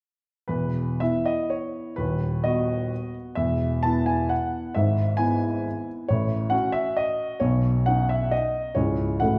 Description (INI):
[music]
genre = classical, romantic triple-time dance for piano with dotted rhythms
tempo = 113-142 BPM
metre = 3/4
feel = rubato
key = E major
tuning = A4 = 440 Hz
[part]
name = warm grand piano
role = solo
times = 0.5-9.4 s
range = C#1 to A5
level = -25 LUFS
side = equal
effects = none
[sound]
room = wet recital hall reverb, RT60 1.4 s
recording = recorded in a church or concert hall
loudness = -25 LUFS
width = mono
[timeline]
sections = 0.5-9.4 A section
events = none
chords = 0.5 E5; 2.0 B/D#; 3.4 E5; 4.8 E/G#; 6.1 F#m/A; 7.4 Badd9; 8.8 C#m